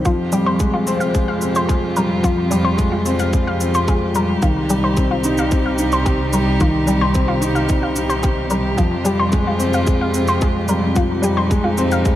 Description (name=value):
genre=piano and strings electronica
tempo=110 BPM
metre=4/4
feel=straight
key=F minor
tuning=A4 = 441 Hz
part: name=rich string quartet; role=sustained chords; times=0.0-12.2 s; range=C3 to G4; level=-25 LUFS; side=right 2 dB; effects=sidechain pumping
part: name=felt-muted upright piano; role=riff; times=0.0-12.2 s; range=Eb3 to Eb4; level=-19 LUFS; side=left 1 dB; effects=tape echo
part: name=warm chamber double bass section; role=bass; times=0.0-12.2 s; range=C2 to F2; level=-22 LUFS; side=right 1 dB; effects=sidechain pumping
part: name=analog pluck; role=arpeggios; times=0.1-12.0 s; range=F4 to F5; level=-24 LUFS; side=left 1 dB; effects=chorus, cassette tape, sidechain pumping, tape echo
part: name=electronic kick drum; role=drums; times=0.1-12.2 s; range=none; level=-18 LUFS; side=equal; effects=overdrive
part: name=shaker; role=drums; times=0.1-12.2 s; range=none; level=-30 LUFS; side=right 1 dB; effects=overdrive
room=light reverb, small room reverb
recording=none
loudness=-15 LUFS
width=side -13 dB against mid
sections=0.0-12.2 A section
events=none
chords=0.1 Fmadd9; 4.4 Cm; 8.8 Fmadd9